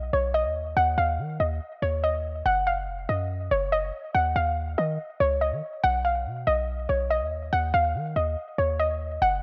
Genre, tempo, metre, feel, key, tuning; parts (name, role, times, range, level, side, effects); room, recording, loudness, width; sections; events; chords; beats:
hip hop, trap; 142 BPM; 4/4; half-time; Eb minor; A4 = 440 Hz
warm 808-style bass; bass; 0.0-9.4 s; F1 to Eb3; -31 LUFS; equal
soft round pluck; melody; 0.1-9.4 s; Db5 to Gb5; -27 LUFS; equal; chorus, low-pass filter
light reverb, digital ambience; rough home demo mix; -26 LUFS; mono
0.0-9.4 A section
0.0 B; 0.8 Ebm9; 2.5 Ebm9/F; 4.1 Dbadd9; 5.8 B; 7.5 Ebm9
0.34 | 0.77 1.19 1.61 2.03 | 2.46 2.88 3.30 3.73 | 4.15 4.57 4.99 5.42 | 5.84 6.26 6.68 7.11 | 7.53 7.95 8.37 8.79 | 9.22